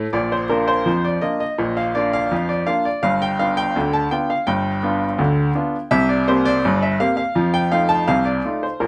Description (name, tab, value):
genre	ragtime piano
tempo	83 BPM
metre	2/4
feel	straight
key	Bb major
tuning	A4 = 436 Hz
part	clear baby grand piano	solo	0.0-8.9 s	G1 to A5	-20 LUFS	equal	none
room	moderate studio reverb, RT60 0.6 s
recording	band playing live in one room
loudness	-19 LUFS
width	mono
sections	0.1-8.9 A section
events	none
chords	0.1 Bb; 3.0 G7; 5.9 C5; 7.3 F7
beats	| 0.14 0.87 | 1.59 2.31 | 3.03 3.76 | 4.48 5.20 | 5.91 6.63 | 7.35 8.07 | 8.80